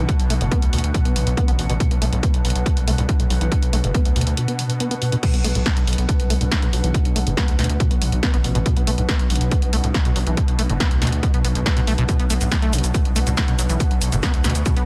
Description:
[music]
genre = driving peak-time techno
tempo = 140 BPM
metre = 4/4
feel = straight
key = B minor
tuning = A4 = 440 Hz
[part]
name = acid bass, saw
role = riff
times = 0.0-14.9 s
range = B1 to B3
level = -28 LUFS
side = equal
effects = subtle chorus, cassette tape, sidechain pumping, delay
[part]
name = gritty driven synth bass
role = bass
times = 0.0-14.8 s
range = F#1 to D2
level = -24 LUFS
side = equal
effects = tube saturation, sidechain pumping
[part]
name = swarming drone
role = drone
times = 0.0-14.9 s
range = B2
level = -33 LUFS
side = equal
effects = built-in reverb, sidechain pumping
[part]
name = granular cloud pad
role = texture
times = 0.0-14.9 s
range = D4 to F#5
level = -35 LUFS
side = equal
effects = built-in reverb, sidechain pumping
[part]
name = electronic kick drum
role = drums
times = 0.1-14.7 s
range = none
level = -22 LUFS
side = equal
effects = overdrive
[part]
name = punchy analog drum machine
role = drums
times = 0.1-14.9 s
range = crash cymbal, hi-hat, shaker, snare drum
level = -29 LUFS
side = equal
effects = none
[sound]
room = little or no reverb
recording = none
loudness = -20 LUFS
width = mono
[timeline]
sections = 0.0-14.9 A section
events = filter sweep on acid bass 0.0-14.9; break 4.4-5.2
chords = 0.0 Bm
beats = | 0.09 0.52 0.94 1.37 | 1.80 2.23 2.66 3.09 | 3.52 3.94 4.37 4.80 | 5.23 5.66 6.09 6.52 | 6.95 7.37 7.80 8.23 | 8.66 9.09 9.52 9.95 | 10.37 10.80 11.23 11.66 | 12.09 12.52 12.95 13.37 | 13.80 14.23 14.66

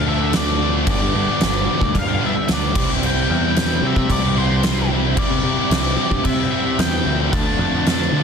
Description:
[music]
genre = quiet-loud alternative rock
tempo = 112 BPM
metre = 4/4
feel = straight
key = C major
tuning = A4 = 440 Hz
[part]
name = octave-fuzz lead guitar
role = melody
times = 0.0-8.2 s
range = C5 to A5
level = -25 LUFS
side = equal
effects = distortion, slapback echo
[part]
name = distorted electric guitar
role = riff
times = 0.0-8.2 s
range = G2 to E4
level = -25 LUFS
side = left 13 dB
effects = overdrive
[part]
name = fuzz guitar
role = riff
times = 0.0-8.2 s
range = G2 to D4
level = -25 LUFS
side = right 1 dB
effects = distortion
[part]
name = growling picked electric bass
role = bass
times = 0.0-8.2 s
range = G1 to D3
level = -22 LUFS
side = equal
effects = overdrive
[part]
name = tight distorted guitar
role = riff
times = 0.1-8.2 s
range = G2 to E4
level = -27 LUFS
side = right 13 dB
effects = distortion
[part]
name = oversized low-tuned drum kit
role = drums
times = 0.3-8.0 s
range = crash cymbal, kick drum, snare drum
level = -20 LUFS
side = equal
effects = none
[sound]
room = light reverb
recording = dense, heavily limited modern master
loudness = -16 LUFS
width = side -6 dB against mid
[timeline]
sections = 0.0-8.2 A section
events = none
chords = 0.0 Dm; 0.9 G; 2.8 C; 7.3 Dm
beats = 0.35 | 0.89 1.42 1.96 2.50 | 3.03 3.57 4.11 4.64 | 5.18 5.72 6.25 6.79 | 7.33 7.87

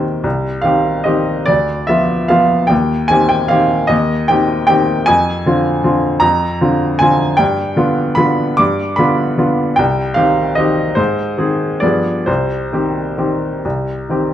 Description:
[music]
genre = classical, piano waltz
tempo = 126-165 BPM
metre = 3/4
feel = rubato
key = C minor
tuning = A4 = 440 Hz
[part]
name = bright upright piano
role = solo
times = 0.0-14.3 s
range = C2 to D6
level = -12 LUFS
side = equal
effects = none
[sound]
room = moderate recital hall reverb, RT60 1.2 s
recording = dark, warm production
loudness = -12 LUFS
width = side -11 dB against mid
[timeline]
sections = 0.0-14.3 A section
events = none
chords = 0.2 Cm; 1.5 Bdim/D; 2.7 Cm/Eb; 5.1 Dm7b5/F; 7.4 G7; 9.8 Cm; 11.0 Ab; 11.8 G7b9; 12.3 Cm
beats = | 0.25 0.65 1.07 | 1.49 1.90 2.31 | 2.71 3.11 3.52 | 3.91 4.30 4.70 | 5.09 5.46 5.85 | 6.24 6.62 7.02 | 7.40 7.78 8.18 | 8.59 8.98 9.39 | 9.79 10.18 10.59 | 10.98 11.39 11.83 | 12.27 12.72 13.18 | 13.64 14.10

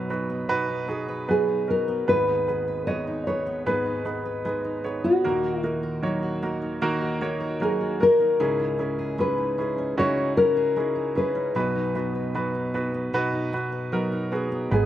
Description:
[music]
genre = pop ballad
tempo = 76 BPM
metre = 4/4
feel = straight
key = B major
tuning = A4 = 442 Hz
[part]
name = clear grand piano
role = accompaniment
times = 0.0-14.9 s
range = G#1 to C#5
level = -28 LUFS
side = right 3 dB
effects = slapback echo
[part]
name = fingerpicked steel-string acoustic guitar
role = arpeggios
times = 0.0-14.9 s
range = G#2 to B4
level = -31 LUFS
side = left 2 dB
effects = none
[part]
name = nylon-string guitar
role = melody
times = 1.3-14.9 s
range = F#4 to D#5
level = -23 LUFS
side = left 1 dB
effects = slapback echo
[part]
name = glassy FM pad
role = sustained chords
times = 14.8-14.9 s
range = B3 to D#6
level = -34 LUFS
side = right 1 dB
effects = ensemble chorus, built-in reverb
[part]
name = fingered electric bass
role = bass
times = 14.7-14.9 s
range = G#1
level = -21 LUFS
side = equal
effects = none
[sound]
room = little or no reverb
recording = recorded outdoors, with no room sound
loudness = -22 LUFS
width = side -12 dB against mid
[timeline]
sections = 0.0-14.7 A section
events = none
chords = 0.0 B; 2.1 G#m; 5.2 D#m; 8.4 C#madd9; 11.6 B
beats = 0.50 1.29 | 2.08 2.87 3.66 4.45 | 5.24 6.03 6.82 7.61 | 8.39 9.19 9.97 10.76 | 11.55 12.34 13.13 13.92 | 14.71

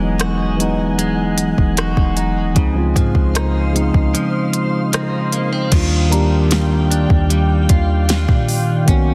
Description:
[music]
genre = contemporary R&B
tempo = 76 BPM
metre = 4/4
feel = straight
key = Eb major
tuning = A4 = 439 Hz
[part]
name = mellow tine electric piano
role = accompaniment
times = 0.0-9.1 s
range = Db3 to G4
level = -21 LUFS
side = equal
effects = none
[part]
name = glassy FM pad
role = sustained chords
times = 0.0-9.1 s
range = Eb3 to C6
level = -28 LUFS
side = equal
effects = ensemble chorus, built-in reverb, sidechain pumping
[part]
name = direct-recorded clean electric guitar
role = arpeggios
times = 0.0-9.1 s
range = Db3 to F#4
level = -28 LUFS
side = equal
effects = lush chorus, delay
[part]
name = soft 808-style bass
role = bass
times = 0.0-9.1 s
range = D#1 to Bb2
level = -21 LUFS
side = equal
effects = none
[part]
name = smooth R&B drum kit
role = drums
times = 0.2-9.1 s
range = crash cymbal, hi-hat, kick drum, rim click, snare drum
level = -20 LUFS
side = equal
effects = none
[part]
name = celesta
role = texture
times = 6.1-7.9 s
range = Bb5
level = -34 LUFS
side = equal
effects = delay
[sound]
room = light reverb, digital ambience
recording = dense, heavily limited modern master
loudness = -16 LUFS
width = mono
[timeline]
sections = 0.0-5.7 A section; 5.7-9.1 B section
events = kick muted 4.1-5.7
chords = 0.0 Emaj9; 2.6 Dbmaj9; 5.7 Ebmaj9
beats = 0.19 0.98 1.77 | 2.56 3.35 4.14 4.93 | 5.72 6.51 7.30 8.09 | 8.88

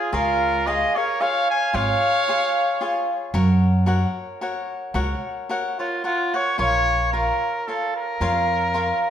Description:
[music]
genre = mexican folk, mariachi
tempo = 111 BPM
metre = 3/4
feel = swing 54% on 8ths, rubato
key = F# major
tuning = A4 = 439 Hz
[part]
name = clear trumpet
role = melody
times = 0.0-3.1, 5.8-9.1 s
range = E#4 to G#5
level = -22 LUFS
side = equal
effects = none
[part]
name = bright trumpet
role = second line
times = 0.0-3.1 s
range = E#4 to E#5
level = -26 LUFS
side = right 4 dB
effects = none
[part]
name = cavaquinho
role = accompaniment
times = 0.0-9.1 s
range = E#4 to F#5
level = -24 LUFS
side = left 1 dB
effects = none
[part]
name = upright bass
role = bass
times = 0.1-8.9 s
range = G#1 to F#2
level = -22 LUFS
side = right 1 dB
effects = none
[sound]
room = wet recital hall reverb, RT60 1.3 s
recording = minimal, uncompressed stereo recording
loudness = -19 LUFS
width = side -9 dB against mid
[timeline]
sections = 0.0-6.6 A section; 6.6-9.1 B section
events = none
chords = 0.0 C#; 3.3 F#; 6.6 Bbm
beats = | 0.12 0.66 1.20 | 1.74 2.27 2.81 | 3.34 3.87 4.41 | 4.95 5.49 6.04 | 6.59 7.13 7.67 | 8.21 8.74

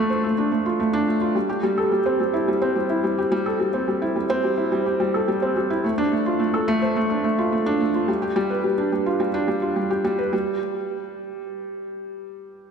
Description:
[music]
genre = electronica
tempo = 107 BPM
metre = 4/4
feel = straight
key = unclear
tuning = A4 = 439 Hz
[part]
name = felt-muted upright piano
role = solo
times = 0.0-12.7 s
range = G3 to C5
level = -20 LUFS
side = equal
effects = ping-pong delay
[sound]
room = wet lush hall reverb, RT60 2.9 s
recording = dreamy mix soaked in reverb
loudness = -20 LUFS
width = side -6 dB against mid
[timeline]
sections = 0.0-10.3 A section; 10.3-12.6 B section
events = drop 0.0-10.3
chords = none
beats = 0.24 0.80 | 1.36 1.92 2.48 3.04 | 3.60 4.16 4.72 5.28 | 5.84 6.40 6.96 7.53 | 8.09 8.65 9.21 9.77 | 10.33 10.89 11.45 12.01

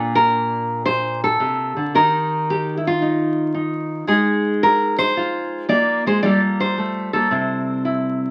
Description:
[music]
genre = solo jazz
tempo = 112 BPM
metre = 4/4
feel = swing 69% on 8ths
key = unclear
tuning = A4 = 440 Hz
[part]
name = nylon-string guitar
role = solo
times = 0.0-8.3 s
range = Bb2 to D5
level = -20 LUFS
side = equal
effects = none
[sound]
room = moderate club reverb, RT60 0.7 s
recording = very old 78 rpm record, vinyl crackle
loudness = -20 LUFS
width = mono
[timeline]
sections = 0.0-8.3 A section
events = none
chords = 0.0 Bbmaj9; 1.9 Ebadd9; 4.1 Ab6; 6.2 Gm11; 7.3 C6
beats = 0.33 0.86 1.40 | 1.94 2.47 3.01 3.55 | 4.08 4.62 5.16 5.69 | 6.23 6.77 7.30 7.84

